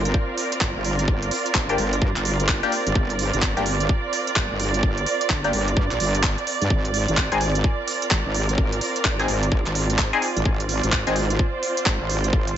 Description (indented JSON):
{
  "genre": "bass house",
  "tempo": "128 BPM",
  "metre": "4/4",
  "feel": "swing 62% on 16ths",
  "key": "G phrygian",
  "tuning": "A4 = 440 Hz",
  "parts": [
    { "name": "wobble bass", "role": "bass", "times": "0.0-12.5 s", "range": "G1 to G2", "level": "-24 LUFS", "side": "equal", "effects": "chorus, overdrive, sidechain pumping" },
    { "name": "muted studio string section", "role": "texture", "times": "0.0-12.6 s", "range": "C4 to D5", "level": "-26 LUFS", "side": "right 3 dB", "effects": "sidechain pumping" },
    { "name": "electronic kick drum", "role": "drums", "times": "0.1-12.4 s", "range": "none", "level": "-22 LUFS", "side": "equal", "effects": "none" },
    { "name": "garage drum kit", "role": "drums", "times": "0.1-12.5 s", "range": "handclaps, hi-hat", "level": "-26 LUFS", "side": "right 1 dB", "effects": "none" },
    { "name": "band-passed chord stab", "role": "stabs", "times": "1.7-11.1 s", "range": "Bb3 to Ab4", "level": "-27 LUFS", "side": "left 4 dB", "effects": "phaser, sidechain pumping, dub echo" }
  ],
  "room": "light reverb",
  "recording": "nothing above 7.9 kHz",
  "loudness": "-20 LUFS",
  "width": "side -10 dB against mid",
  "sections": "0.0-12.6 A section",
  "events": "none",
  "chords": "0.0 Gm; 6.7 Ab"
}